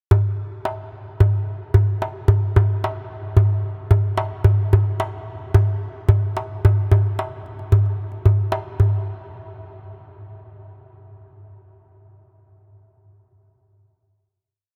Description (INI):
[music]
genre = arabic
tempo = 110 BPM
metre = 4/4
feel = straight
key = none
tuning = none
[part]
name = darbuka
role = percussion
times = 0.1-9.1 s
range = none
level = -20 LUFS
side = equal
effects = none
[sound]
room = light reverb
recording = none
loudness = -20 LUFS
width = mono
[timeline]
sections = 0.1-8.8 A section; 8.8-11.0 final hit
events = none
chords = none